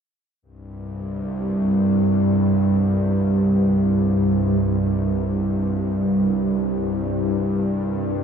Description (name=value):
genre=ambient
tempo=free time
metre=none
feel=none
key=unclear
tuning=A4 = 440 Hz
part: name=bowed-like drone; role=drone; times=0.7-8.2 s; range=C2 to G2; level=-18 LUFS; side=equal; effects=built-in reverb
room=wet huge ambient reverb, RT60 7.6 s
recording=dark, warm production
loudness=-18 LUFS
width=side -7 dB against mid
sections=0.4-8.2 A section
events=none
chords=0.4 C5